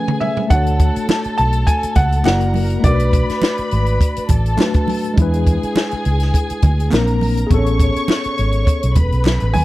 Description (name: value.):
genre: lush 1970s-style soul.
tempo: 103 BPM.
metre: 4/4.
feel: swing 54% on 16ths.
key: A major.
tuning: A4 = 440 Hz.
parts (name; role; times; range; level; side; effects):
dark studio string section; second line; 0.0-9.6 s; G#4 to C#6; -24 LUFS; left 1 dB; none.
tine electric piano; accompaniment; 0.0-9.6 s; G#3 to D5; -22 LUFS; left 2 dB; overdrive, fast stereo tremolo.
compact cocktail drum kit; drums; 0.1-9.6 s; hi-hat, kick drum, snare drum, toms; -17 LUFS; equal; none.
clear grand piano; melody; 0.2-4.5, 9.5-9.6 s; D5 to A5; -22 LUFS; equal; none.
vintage muted fingered electric bass; bass; 0.5-9.6 s; E1 to E2; -17 LUFS; equal; none.
congas; percussion; 0.5-9.6 s; none; -24 LUFS; right 5 dB; none.
group handclap; percussion; 1.1-9.4 s; none; -33 LUFS; left 3 dB; none.
room: little or no reverb.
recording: dry, close 1970s-style studio recording.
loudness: -14 LUFS.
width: side -17 dB against mid.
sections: 0.5-9.6 A section.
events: break 0.0-0.5; drum fill 0.0-0.5.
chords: 0.0 Amaj9; 0.5 Dmaj7; 2.3 F#7b13; 2.8 Bm7; 5.2 E7; 6.9 Bbadd9; 7.5 Amaj9.